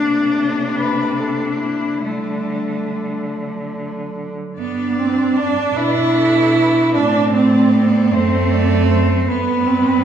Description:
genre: classical, lyrical piece for cello ensemble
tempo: 46-52 BPM (dotted quarters)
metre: 6/8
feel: rubato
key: G major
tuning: A4 = 440 Hz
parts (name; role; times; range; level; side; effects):
- rich cello; second line; 0.0-10.0 s; F#3 to E4; -18 LUFS; right 3 dB; none
- clear cello; accompaniment; 0.0-10.0 s; A3 to D4; -22 LUFS; left 2 dB; none
- rich cello; bass; 0.0-10.0 s; F#2 to D3; -21 LUFS; right 1 dB; none
- rich cello; melody; 0.8-10.0 s; D4 to D5; -26 LUFS; left 5 dB; none
room: wet recital hall reverb, RT60 1.4 s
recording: heard from further back in the room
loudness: -14 LUFS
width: side -9 dB against mid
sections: 0.0-4.6 A section; 4.6-10.0 B section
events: none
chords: 0.0 Am/C; 2.0 Dsus4; 4.6 G; 7.0 D7/A; 9.3 G

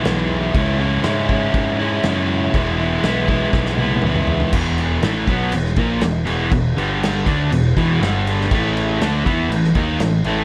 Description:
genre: garage rock duo or trio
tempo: 121 BPM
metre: 4/4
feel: straight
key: E major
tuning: A4 = 437 Hz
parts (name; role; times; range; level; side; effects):
- overdriven electric guitar; riff; 0.0-10.4 s; E2 to E4; -21 LUFS; equal; none
- fuzz picked electric bass; bass; 0.1-10.4 s; E1 to G#2; -25 LUFS; equal; overdrive
- vintage drum kit; drums; 0.1-10.4 s; crash cymbal, kick drum, snare drum, toms; -25 LUFS; equal; none
room: little or no reverb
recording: none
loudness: -18 LUFS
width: mono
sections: 0.0-4.5 A section; 4.5-10.4 B section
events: drum fill 3.5-4.5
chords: 0.0 E; 0.6 C#m; 2.5 E; 4.5 E5; 6.8 G5; 7.3 E5; 8.0 G5; 8.5 A5

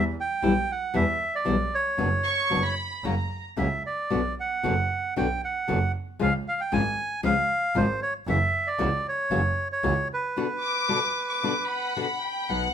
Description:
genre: tango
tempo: 114 BPM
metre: 4/4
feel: rubato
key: B harmonic minor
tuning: A4 = 440 Hz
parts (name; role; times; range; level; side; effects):
- bandoneon; melody; 0.0-11.9 s; B4 to G#5; -26 LUFS; right 2 dB; none
- bright double bass; bass; 0.0-12.7 s; F#1 to E2; -29 LUFS; right 2 dB; none
- nylon-string guitar; accompaniment; 0.4-12.7 s; B2 to F#4; -27 LUFS; left 5 dB; none
- warm chamber violin section; second line; 2.2-3.4, 10.6-12.7 s; F#5 to D6; -27 LUFS; left 1 dB; none
room: light reverb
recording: minimal, uncompressed stereo recording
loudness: -23 LUFS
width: side -8 dB against mid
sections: 0.0-12.5 A section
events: none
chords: 0.0 Em; 2.0 Bm/F#; 3.0 F#; 4.1 Bm; 6.2 C#; 8.3 F#7; 10.4 Bm

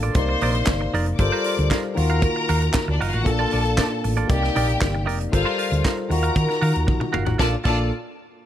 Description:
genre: disco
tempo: 116 BPM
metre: 4/4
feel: straight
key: Bb major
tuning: A4 = 440 Hz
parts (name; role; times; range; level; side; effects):
- barky tine electric piano; accompaniment; 0.0-7.9 s; Bb2 to D5; -26 LUFS; left 3 dB; overdrive, wide subtle chorus
- semi-hollow electric guitar; accompaniment; 0.0-7.8 s; Eb4 to Gb5; -29 LUFS; right 6 dB; none
- hollow-body short-scale fingered electric bass; bass; 0.0-7.9 s; F1 to Eb3; -22 LUFS; equal; none
- tight funk drum kit; drums; 0.0-7.8 s; crash cymbal, handclaps, hi-hat, kick drum, snare drum, toms; -24 LUFS; equal; none
- clear studio string section; second line; 0.1-7.9 s; D4 to D6; -26 LUFS; left 2 dB; none
room: small room ambience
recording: none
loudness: -19 LUFS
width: side -11 dB against mid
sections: 0.0-7.4 A section; 7.4-8.5 B section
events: drum fill 6.9-7.4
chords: 0.2 Cm9; 1.2 Gm11; 2.0 Ebmadd9; 3.3 Bbmaj7; 4.3 Cm9; 5.3 Gm11; 6.1 Ebmadd9; 7.4 Bbmaj7

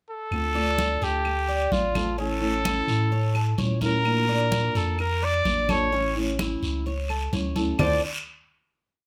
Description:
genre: latin, Cuban son and guajira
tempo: 128 BPM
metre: 4/4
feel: straight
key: D harmonic minor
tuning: A4 = 439 Hz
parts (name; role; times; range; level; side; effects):
- clear trumpet; melody; 0.1-8.0 s; F4 to D5; -28 LUFS; equal; none
- nylon-string guitar; accompaniment; 0.3-8.0 s; D3 to F4; -32 LUFS; equal; none
- punchy sub bass; bass; 0.3-8.0 s; A1 to Bb2; -30 LUFS; equal; none
- claves; percussion; 0.3-7.9 s; none; -36 LUFS; equal; none
- congas; percussion; 0.3-7.9 s; none; -32 LUFS; equal; none
- guiro; percussion; 0.3-7.9 s; none; -39 LUFS; equal; none
- Cuban tres; arpeggios; 0.6-8.0 s; C#4 to D5; -33 LUFS; equal; none
room: moderate small room ambience, RT60 0.5 s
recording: none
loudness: -25 LUFS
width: mono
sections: 0.0-0.3 pickup bar; 0.3-7.8 verse; 7.8-9.1 final chord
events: none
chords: 0.3 Dm7; 2.2 A; 4.1 Bb; 5.9 A; 7.8 Dm7

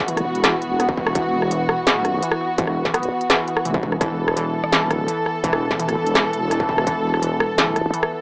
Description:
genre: half-time drum and bass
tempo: 168 BPM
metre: 4/4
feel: half-time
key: unclear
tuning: A4 = 440 Hz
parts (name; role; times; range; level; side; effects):
- dark studio string section; sustained chords; 0.0-8.2 s; E3 to A4; -26 LUFS; equal; sidechain pumping
- deep soft wobble bass; bass; 0.0-7.9 s; E1; -28 LUFS; equal; chorus
- warbly dusty pluck; arpeggios; 0.1-8.2 s; E3 to B3; -29 LUFS; equal; chorus, analog delay
- industrial drum kit; drums; 0.1-8.1 s; hi-hat, rim click, snare drum; -22 LUFS; equal; cassette tape
- electronic kick drum; drums; 0.9-6.9 s; none; -28 LUFS; equal; distortion, cassette tape
room: moderate studio ambience, RT60 0.5 s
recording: home recording on cassette, small speaker sound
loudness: -20 LUFS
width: mono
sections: 0.0-8.2 A section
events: none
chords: 0.0 E5

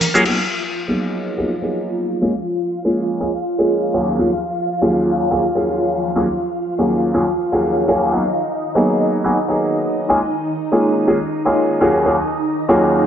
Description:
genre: house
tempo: 122 BPM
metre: 4/4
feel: swing 56% on 16ths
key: Eb minor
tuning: A4 = 440 Hz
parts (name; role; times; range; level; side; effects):
- string machine, full ensemble; sustained chords; 0.0-13.1 s; Eb4 to F5; -21 LUFS; equal; phaser, ensemble chorus, low-pass filter
- bright grand piano; accompaniment; 0.1-13.1 s; Eb2 to Ab4; -17 LUFS; equal; phaser, low-pass filter
room: wet lush hall reverb, RT60 2.2 s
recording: nothing above 8.0 kHz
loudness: -16 LUFS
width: side -9 dB against mid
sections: 0.3-13.1 A section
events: filter sweep 0.3-13.1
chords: 0.3 Abm9; 2.2 Bbm7; 3.9 Ebm11; 8.1 Abm9; 10.1 Bbm7; 11.8 Ebm11

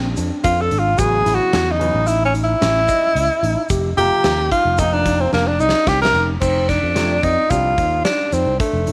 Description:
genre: progressive instrumental, band music in an uneven meter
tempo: 110 BPM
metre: 5/4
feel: straight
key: F mixolydian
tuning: A4 = 440 Hz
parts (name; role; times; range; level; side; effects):
- mellow tine electric piano; arpeggios; 0.0-8.9 s; C4 to Eb5; -29 LUFS; equal; tape echo
- sustaining fretless electric bass; bass; 0.0-8.9 s; F1 to F2; -24 LUFS; equal; none
- big rock drum kit; drums; 0.2-8.9 s; crash cymbal, hi-hat, kick drum, snare drum; -27 LUFS; equal; none
- tube shaker; percussion; 0.2-8.6 s; none; -38 LUFS; equal; none
- warm tenor saxophone; melody; 0.4-8.9 s; A3 to Bb4; -19 LUFS; equal; none
- warm concert grand piano; accompaniment; 1.0-7.7 s; C3 to B3; -30 LUFS; equal; none
room: light reverb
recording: none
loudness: -17 LUFS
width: mono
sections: 0.0-6.4 A section; 6.4-8.9 B section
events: tenor saxophone solo 0.0-6.4; drum fill 5.3-6.4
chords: 0.0 Bb; 1.0 A6; 3.7 F9sus4; 6.4 F7(no3)

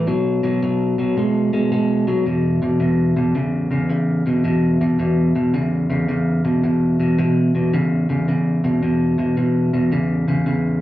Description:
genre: blues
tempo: 110 BPM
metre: 4/4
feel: swing 66% on 8ths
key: E major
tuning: A4 = 444 Hz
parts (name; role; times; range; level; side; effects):
- electric guitar at the edge of break-up; solo; 0.0-10.8 s; E2 to G#3; -16 LUFS; equal; analog delay
room: light reverb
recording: live gig heard through the venue's PA, club reverb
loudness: -16 LUFS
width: side -14 dB against mid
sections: 0.0-2.3 A section; 2.3-10.8 A section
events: none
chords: 0.1 B5; 2.3 E5

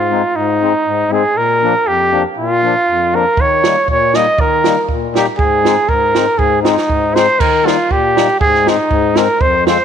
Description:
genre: alpine folk, alpine dance band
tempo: 119 BPM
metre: 2/4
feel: straight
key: Ab major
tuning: A4 = 440 Hz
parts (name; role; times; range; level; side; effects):
- mellow trumpet; melody; 0.0-9.8 s; Eb4 to Eb5; -13 LUFS; right 2 dB; none
- mellow accordion; accompaniment; 0.0-9.8 s; F2 to F4; -17 LUFS; left 10 dB; none
- compact cocktail drum kit; drums; 3.4-9.8 s; crash cymbal, kick drum, snare drum; -18 LUFS; right 4 dB; none
room: moderate echo chamber reverb, RT60 1.9 s, small room reverb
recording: 1960s-style stereo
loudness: -11 LUFS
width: side -8 dB against mid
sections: 0.0-7.4 A section; 7.4-9.8 B section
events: none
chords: 0.0 Ab; 1.4 Bb; 3.4 Eb7; 5.4 Ab; 7.4 Eb; 8.4 Ab

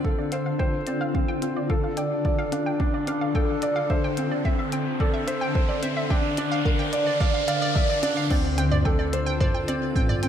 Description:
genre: piano and strings electronica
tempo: 109 BPM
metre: 4/4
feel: straight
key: unclear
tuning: A4 = 440 Hz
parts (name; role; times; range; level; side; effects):
- granular cloud pad; sustained chords; 0.0-10.3 s; D3 to C5; -29 LUFS; left 2 dB; built-in reverb
- felt-muted upright piano; riff; 0.0-10.3 s; C4 to F5; -27 LUFS; equal; digital delay
- electronic kick drum; drums; 0.0-10.1 s; none; -24 LUFS; equal; none
- riser; sound effects; 1.6-8.3 s; none; -35 LUFS; equal; none
- analog pluck; arpeggios; 0.2-10.3 s; D5 to G5; -32 LUFS; right 2 dB; chorus, cassette tape, sidechain pumping, digital delay
- minimal click drum kit; drums; 0.3-10.3 s; crash cymbal, hi-hat, toms; -32 LUFS; right 1 dB; none
- warm studio double bass section; bass; 8.3-10.3 s; A1 to D2; -28 LUFS; equal; tube saturation, sidechain pumping
room: moderate recital hall reverb, RT60 1.8 s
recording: none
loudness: -22 LUFS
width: side -9 dB against mid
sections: 0.0-8.3 A section; 8.3-10.3 B section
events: build-up 0.0-8.3; filter sweep on ambient pad 0.0-8.3; filter sweep on synth arpeggio sound 0.0-8.3; riser 1.6-8.3; drop 8.3-10.3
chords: 0.0 F/D; 1.7 Dm; 3.9 Am/D; 6.1 Bb/D; 8.3 F/D

